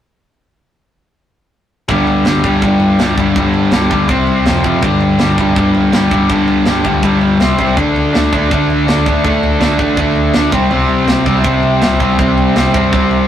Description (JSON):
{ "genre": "punk rock", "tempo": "163 BPM", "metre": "4/4", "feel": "straight", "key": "unclear", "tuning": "A4 = 440 Hz", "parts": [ { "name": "biting overdriven guitar", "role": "riff", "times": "1.9-13.3 s", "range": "F2 to D4", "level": "-13 LUFS", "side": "left 2 dB", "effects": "none" }, { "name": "sludgy distorted guitar", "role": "riff", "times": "1.9-13.3 s", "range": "F2 to D4", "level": "-16 LUFS", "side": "right 4 dB", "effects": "overdrive" }, { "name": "overdriven picked electric bass", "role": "bass", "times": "1.9-13.2 s", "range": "F1 to D3", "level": "-21 LUFS", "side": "right 1 dB", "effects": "none" }, { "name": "tight metal drum kit", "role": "drums", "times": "1.9-13.2 s", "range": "kick drum, snare drum, toms", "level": "-18 LUFS", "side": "equal", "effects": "none" } ], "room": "moderate studio reverb, RT60 0.6 s", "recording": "rough rehearsal-room recording, warm saturation", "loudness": "-10 LUFS", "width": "side -10 dB against mid", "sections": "1.9-13.3 A section", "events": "none", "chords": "1.9 G5; 4.1 C5; 4.5 F5; 4.8 G5; 7.4 C5; 7.8 D5; 10.5 C5" }